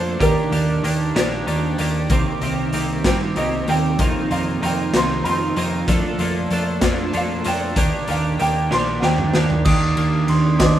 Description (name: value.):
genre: indie rock.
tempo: 63 BPM (dotted quarters).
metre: 6/8.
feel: straight.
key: unclear.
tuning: A4 = 440 Hz.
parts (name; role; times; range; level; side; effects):
warm upright piano; melody; 0.0-10.8 s; G4 to C6; -24 LUFS; right 1 dB; slapback echo.
twelve-string electric guitar; riff; 0.0-10.8 s; Eb3 to G4; -27 LUFS; left 8 dB; none.
twelve-string electric guitar; riff; 0.0-10.8 s; F2 to A4; -23 LUFS; right 5 dB; analog chorus, slapback echo.
hollow-body short-scale picked electric bass; bass; 0.0-10.8 s; Bb1 to G2; -22 LUFS; right 1 dB; none.
raw garage drum kit; drums; 0.2-10.7 s; crash cymbal, hi-hat, kick drum, ride cymbal, snare drum, toms; -22 LUFS; left 1 dB; none.
glockenspiel with brass mallets; second line; 9.6-10.8 s; C6 to Eb6; -24 LUFS; right 1 dB; none.
room: little or no reverb.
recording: rough home demo mix.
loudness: -17 LUFS.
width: side -11 dB against mid.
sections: 0.0-9.7 A section; 9.7-10.8 B section.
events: upright piano solo 0.0-9.7; drum fill 8.7-9.7.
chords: 0.2 Ebmaj7; 2.1 Cm7; 4.0 F7sus4; 5.9 Bbmaj7/F; 7.8 Ebmaj7.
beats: | 0.20 1.15 | 2.10 3.04 | 3.99 4.93 | 5.88 6.82 | 7.77 8.71 | 9.66 10.60.